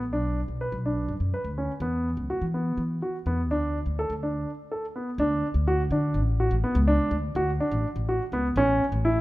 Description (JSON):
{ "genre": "contemporary instrumental, chamber music in an uneven meter", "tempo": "249 BPM (eighths)", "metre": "7/8", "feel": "straight", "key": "unclear", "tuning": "A4 = 440 Hz", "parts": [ { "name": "upright bass", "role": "bass", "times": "0.0-9.2 s", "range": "A1 to E3", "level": "-27 LUFS", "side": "equal", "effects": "none" }, { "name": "warm grand piano", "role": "arpeggios", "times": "0.1-9.2 s", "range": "B3 to B4", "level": "-27 LUFS", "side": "equal", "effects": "none" } ], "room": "moderate recital hall reverb, RT60 1.8 s", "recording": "none", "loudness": "-24 LUFS", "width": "side -18 dB against mid", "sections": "0.0-5.2 A section; 5.2-9.2 B section", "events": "break 4.5-5.2", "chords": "0.1 Bm; 1.8 Esus2; 3.5 D5; 5.2 D; 8.6 A", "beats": "| 0.12 0.36 0.60 0.84 1.09 1.33 1.57 | 1.81 2.05 2.29 2.54 2.78 3.02 3.26 | 3.50 3.74 3.98 4.22 4.47 4.71 4.95 | 5.19 5.43 5.67 5.91 6.15 6.39 6.63 | 6.88 7.12 7.36 7.60 7.84 8.08 8.32 | 8.56 8.80 9.04" }